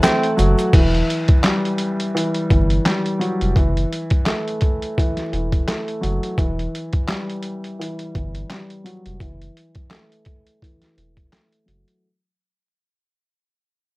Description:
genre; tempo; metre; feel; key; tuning
hip hop, boom-bap hip-hop; 85 BPM; 4/4; swing 57% on 16ths; E minor; A4 = 437 Hz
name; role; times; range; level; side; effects
dark baby grand piano; accompaniment; 0.0-12.0 s; E3 to A3; -22 LUFS; equal; cassette tape, high-pass filter, low-pass filter
warm studio string section; sustained chords; 0.0-0.7 s; E4 to A5; -36 LUFS; left 2 dB; none
boom bap sampler-style drum kit; drums; 0.0-12.0 s; crash cymbal, handclaps, hi-hat, kick drum, snare drum; -18 LUFS; equal; none
egg shaker; percussion; 0.0-0.7 s; none; -40 LUFS; right 5 dB; none
soft dub sub bass; bass; 0.4-11.8 s; E1 to G1; -21 LUFS; equal; none
room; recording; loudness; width
light reverb; worn, warbling old tape, cassette tape, vinyl crackle, warbly pitch drift; -17 LUFS; side -22 dB against mid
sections
0.7-12.0 A section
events
fade-out 0.7-12.0; filter sweep on grand piano 0.7-12.0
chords
0.0 F#m7b5; 0.7 Emadd9; 3.6 Esus24; 6.4 Emadd9; 9.2 Esus24

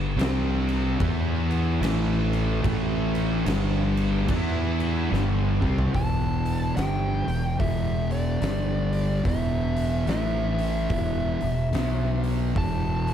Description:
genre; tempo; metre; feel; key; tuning
stoner and doom metal; 73 BPM; 4/4; swing 61% on 8ths; E minor from 5.9 s; A4 = 440 Hz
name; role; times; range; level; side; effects
high-gain distorted guitar; riff; 0.0-5.9 s; G2 to E4; -34 LUFS; equal; distortion
thick fuzz guitar; riff; 0.0-13.1 s; E2 to E4; -29 LUFS; left 8 dB; distortion
thick fuzz guitar; riff; 0.0-13.1 s; E2 to E4; -29 LUFS; right 8 dB; distortion
fuzz fingered electric bass; bass; 0.0-13.1 s; E1 to E2; -28 LUFS; equal; overdrive
oversized low-tuned drum kit; drums; 0.2-13.1 s; crash cymbal, hi-hat, kick drum, snare drum, toms; -30 LUFS; equal; none
fuzz lead guitar; melody; 6.0-13.1 s; D5 to A5; -31 LUFS; equal; distortion, tape echo
room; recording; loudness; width
light reverb; none; -22 LUFS; side -9 dB against mid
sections
0.0-5.9 A section; 5.9-13.1 B section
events
drum fill 5.1-5.9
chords
0.2 C5; 1.0 E5; 1.8 A5; 3.5 G5; 4.3 E5; 5.1 G5; 5.9 Em; 8.4 G5; 9.3 E5; 10.1 A5; 10.9 E5; 11.7 B5; 12.6 E5

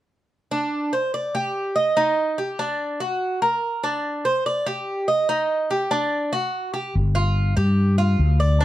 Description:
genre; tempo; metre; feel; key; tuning
latin, Cuban son and guajira; 145 BPM; 4/4; straight; unclear; A4 = 440 Hz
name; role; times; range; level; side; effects
Cuban tres; arpeggios; 0.5-8.6 s; D4 to Eb5; -22 LUFS; right 1 dB; none
mellow fretless electric bass; bass; 7.0-8.6 s; G1 to G2; -17 LUFS; left 1 dB; none
room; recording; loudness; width
light reverb; dark, warm production; -20 LUFS; side -14 dB against mid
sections
0.3-6.9 A section; 6.9-8.6 B section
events
none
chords
0.3 Csus2/D; 1.1 Ebmaj7/G; 2.0 Eb; 2.8 D; 3.6 Bbadd9/D; 4.5 Ebmaj7/G; 5.3 Eb; 6.1 D; 6.9 G5

